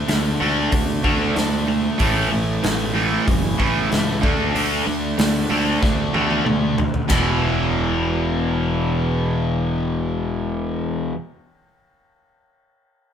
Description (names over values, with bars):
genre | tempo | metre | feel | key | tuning
hard rock | 94 BPM | 4/4 | straight | unclear | A4 = 440 Hz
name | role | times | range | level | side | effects
cranked stack guitar | riff | 0.0-11.2 s | E2 to D4 | -25 LUFS | left 5 dB | overdrive, phaser
overdriven electric guitar | riff | 0.0-11.2 s | E2 to D4 | -25 LUFS | left 2 dB | none
overdriven semi-hollow guitar | riff | 0.0-11.2 s | E2 to D4 | -24 LUFS | right 6 dB | none
fuzz picked electric bass | bass | 0.0-11.1 s | E1 to D2 | -25 LUFS | equal | overdrive
big rock drum kit | drums | 0.1-7.2 s | hi-hat, kick drum, ride cymbal, snare drum, toms | -23 LUFS | equal | none
room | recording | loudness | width
moderate studio reverb, RT60 0.8 s | band playing live in one room | -18 LUFS | side -8 dB against mid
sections
0.0-7.1 A section; 7.1-9.6 B section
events
drum fill 5.8-7.1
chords
0.0 D5; 2.0 A; 4.2 D5; 7.1 E5